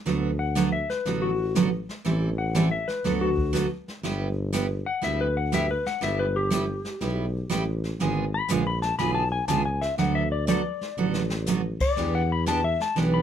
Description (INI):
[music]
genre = country, western swing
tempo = 121 BPM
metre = 4/4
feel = swing 68% on 8ths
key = D major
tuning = A4 = 440 Hz
[part]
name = picked steel-string acoustic guitar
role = accompaniment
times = 0.1-13.2 s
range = D3 to A4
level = -26 LUFS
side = right 5 dB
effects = none
[part]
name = breathy tuba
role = bass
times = 0.1-13.2 s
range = G1 to E2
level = -28 LUFS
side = equal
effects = none
[part]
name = jazz brush drum kit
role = drums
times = 0.1-13.2 s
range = brushed snare drum, crash cymbal, hi-hat, kick drum, snare drum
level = -33 LUFS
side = left 1 dB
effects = none
[part]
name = clean lap steel guitar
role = second line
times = 0.4-13.2 s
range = F#4 to B5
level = -28 LUFS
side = left 5 dB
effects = none
[sound]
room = moderate club ambience, RT60 0.5 s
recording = none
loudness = -23 LUFS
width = side -9 dB against mid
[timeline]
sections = 0.0-13.2 A section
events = electric slide guitar solo 0.0-13.2; drum fill 11.0-11.5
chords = 0.1 D6; 2.1 Am7; 3.0 D6; 4.0 G6; 8.0 G#dim7; 10.0 D6; 12.0 Em7